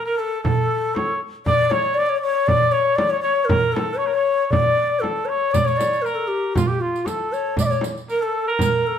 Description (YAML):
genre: Arabic maqam ensemble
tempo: 118 BPM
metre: 4/4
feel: straight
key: D maqam nahawand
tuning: A4 = 440 Hz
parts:
  - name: breathy low ney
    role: melody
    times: 0.0-9.0 s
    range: F4 to E5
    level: -21 LUFS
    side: left 4 dB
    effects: none
  - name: clear trumpet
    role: second line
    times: 0.0-9.0 s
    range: F4 to D5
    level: -24 LUFS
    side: right 2 dB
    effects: none
  - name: darbuka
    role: percussion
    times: 0.4-8.7 s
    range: none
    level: -26 LUFS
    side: right 6 dB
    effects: none
  - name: frame drum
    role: percussion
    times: 0.4-8.7 s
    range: none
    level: -25 LUFS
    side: left 1 dB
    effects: none
  - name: riq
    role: percussion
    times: 5.5-8.7 s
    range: none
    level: -31 LUFS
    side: right 5 dB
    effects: none
room: wet stone room reverb, RT60 1.1 s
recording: band playing live in one room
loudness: -18 LUFS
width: side -8 dB against mid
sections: 0.0-9.0 A section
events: none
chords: none